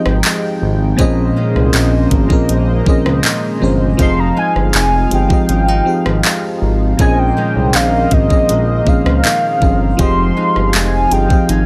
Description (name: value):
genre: contemporary R&B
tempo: 80 BPM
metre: 4/4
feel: straight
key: F minor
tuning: A4 = 439 Hz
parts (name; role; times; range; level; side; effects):
- warm velvety synth lead; melody; 0.0-11.7 s; Eb5 to C6; -20 LUFS; equal; chorus
- FM electric piano; accompaniment; 0.0-11.7 s; Bb2 to F5; -19 LUFS; equal; chorus
- chorused pulse-width pad; sustained chords; 0.0-11.7 s; F3 to G5; -26 LUFS; equal; none
- nylon-string guitar; arpeggios; 0.0-11.7 s; Bb2 to G4; -26 LUFS; equal; none
- smooth gliding synth bass; bass; 0.1-11.7 s; F1 to Db2; -18 LUFS; equal; none
- smooth R&B drum kit; drums; 0.1-11.7 s; handclaps, hi-hat, kick drum, rim click; -18 LUFS; equal; none
room: digital ambience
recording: none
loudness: -14 LUFS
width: mono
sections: 0.0-11.7 A section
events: none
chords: 0.0 Fm9; 1.0 Bbm11; 4.0 Fm9; 7.0 Bbm11; 10.0 Fm9